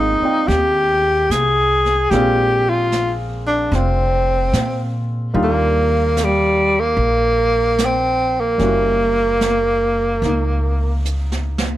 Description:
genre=jazz ballad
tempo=74 BPM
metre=4/4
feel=swing 68% on 8ths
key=Eb major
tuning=A4 = 440 Hz
part: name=warm tenor saxophone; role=melody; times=0.0-11.1 s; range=G3 to Ab4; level=-16 LUFS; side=equal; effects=plate reverb
part: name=clear concert grand piano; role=accompaniment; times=0.0-11.8 s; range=G3 to G5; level=-25 LUFS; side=equal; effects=none
part: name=upright bass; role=bass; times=0.0-11.8 s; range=F1 to Bb2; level=-21 LUFS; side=equal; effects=none
part: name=jazz brush drum kit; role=drums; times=0.5-11.8 s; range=brushed snare drum, hi-hat, snare drum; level=-26 LUFS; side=right 2 dB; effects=none
room=light reverb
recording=none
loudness=-15 LUFS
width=side -14 dB against mid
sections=0.0-11.8 A section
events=drum fill 11.1-11.8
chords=0.0 Abmaj13; 2.1 Bb7; 5.3 Ebmaj7; 8.6 Gb7b9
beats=0.48 1.29 | 2.10 2.92 3.73 4.54 | 5.35 6.16 6.97 7.79 | 8.60 9.42 10.24 11.06

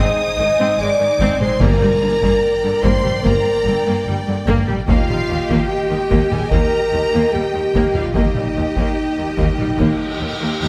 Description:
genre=cinematic, epic orchestral film score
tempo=73 BPM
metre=4/4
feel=straight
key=unclear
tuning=A4 = 439 Hz
part: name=rich symphonic violin section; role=melody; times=0.0-10.7 s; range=Eb5 to Eb6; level=-30 LUFS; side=equal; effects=none
part: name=rich symphonic violin section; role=second line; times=0.0-10.7 s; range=C5 to Ab5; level=-31 LUFS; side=equal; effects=none
part: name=bright symphonic viola section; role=accompaniment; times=0.0-10.7 s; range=D3 to G4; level=-26 LUFS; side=equal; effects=none
part: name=mellow French horn section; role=sustained chords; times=0.0-10.7 s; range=Eb4 to Eb5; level=-21 LUFS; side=equal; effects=none
part: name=rich symphonic cello section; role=bass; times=0.0-10.7 s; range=Eb2 to Ab2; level=-26 LUFS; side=equal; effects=none
part: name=rich symphonic double bass section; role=bass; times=0.0-10.7 s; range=G1 to Eb2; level=-27 LUFS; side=equal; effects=none
part: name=taiko ensemble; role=drums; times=1.2-10.6 s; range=none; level=-24 LUFS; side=equal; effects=none
part: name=timpani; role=percussion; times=1.6-2.8 s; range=G2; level=-27 LUFS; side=equal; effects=none
part: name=cymbal swell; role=sound effects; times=9.3-10.7 s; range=none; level=-31 LUFS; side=equal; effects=none
room=wet concert hall reverb, RT60 2.2 s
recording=none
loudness=-17 LUFS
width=mono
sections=0.0-10.7 A section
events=cymbal swell 9.6-10.7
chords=0.0 Ab; 1.6 Gm; 4.9 Eb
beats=0.80 | 1.61 2.43 3.25 4.07 | 4.89 5.71 6.53 7.34 | 8.16 8.98 9.80 10.62

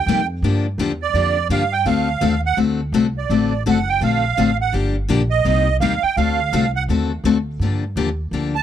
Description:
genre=acoustic string swing (jazz manouche)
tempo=167 BPM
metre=4/4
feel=swing 63% on 8ths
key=G minor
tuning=A4 = 439 Hz
part: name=musette accordion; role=second line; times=0.0-8.6 s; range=D5 to A5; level=-20 LUFS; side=right 8 dB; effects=none
part: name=upright bass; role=bass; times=0.0-8.6 s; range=F#1 to G2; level=-22 LUFS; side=equal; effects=none
part: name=picked steel-string acoustic guitar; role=accompaniment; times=0.1-8.5 s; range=C3 to A4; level=-19 LUFS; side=left 6 dB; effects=none
room=small room ambience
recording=dry, close 1970s-style studio recording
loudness=-16 LUFS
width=side -10 dB against mid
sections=0.0-7.6 A section; 7.6-8.6 A section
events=accordion solo 0.0-8.6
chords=0.0 Gm7; 1.9 D7b9; 4.7 Gm7; 5.5 Cm7; 6.2 D7b9; 7.6 Gm7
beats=0.08 | 0.44 0.80 1.16 1.51 | 1.87 2.23 2.59 2.95 | 3.31 3.66 4.02 4.38 | 4.74 5.10 5.46 5.81 | 6.17 6.53 6.89 7.25 | 7.61 7.97 8.33

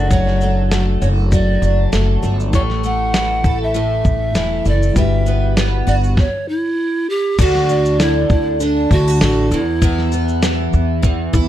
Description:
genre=acoustic pop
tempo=99 BPM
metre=4/4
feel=swing 55% on 16ths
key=D major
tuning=A4 = 440 Hz
part: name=mellow hollow polished pan flute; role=melody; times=0.0-10.1 s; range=D4 to F#5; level=-20 LUFS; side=right 1 dB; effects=ping-pong delay
part: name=overdriven reed electric piano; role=accompaniment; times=0.0-6.2 s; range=G3 to C#6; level=-28 LUFS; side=left 4 dB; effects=none
part: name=picked twelve-string acoustic guitar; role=accompaniment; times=0.0-11.5 s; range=E2 to A4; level=-20 LUFS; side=equal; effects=double-tracked left and right
part: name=upright bass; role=bass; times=0.0-11.5 s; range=E1 to E2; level=-17 LUFS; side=equal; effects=none
part: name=dusty soul sampler-style drum kit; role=drums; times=0.1-11.5 s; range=crash cymbal, kick drum, shaker, snare drum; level=-18 LUFS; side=equal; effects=none
room=little or no reverb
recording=dark, warm production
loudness=-14 LUFS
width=side -12 dB against mid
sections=0.0-7.4 A section; 7.4-11.5 B section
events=stop 6.2-7.4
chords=0.0 D/F#; 2.5 A; 5.0 Emadd9/G; 6.2 N.C.; 7.4 D; 9.5 E5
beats=| 0.11 0.71 1.32 1.93 | 2.54 3.14 3.75 4.36 | 4.96 5.57 6.18 6.78 | 7.39 8.00 8.61 9.21 | 9.82 10.43 11.03

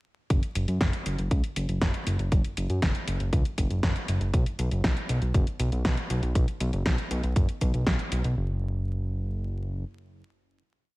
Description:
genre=italo disco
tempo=119 BPM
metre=4/4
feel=straight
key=unclear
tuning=A4 = 441 Hz
part: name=fat analog bass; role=bass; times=0.3-9.8 s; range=F#1 to F#2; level=-28 LUFS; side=equal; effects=none
part: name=electronic kick drum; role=drums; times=0.3-8.0 s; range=none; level=-26 LUFS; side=equal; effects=studio reverb
part: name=house drum kit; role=drums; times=0.3-8.3 s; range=hi-hat, snare drum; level=-31 LUFS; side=equal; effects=studio reverb, gated reverb
room=little or no reverb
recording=vinyl crackle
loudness=-25 LUFS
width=side -21 dB against mid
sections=0.3-8.4 verse; 8.4-11.0 final chord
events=none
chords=none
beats=| 0.30 0.81 1.31 1.81 | 2.32 2.82 3.33 3.83 | 4.34 4.84 5.34 5.85 | 6.35 6.86 7.36 7.87 | 8.37 8.87 9.38

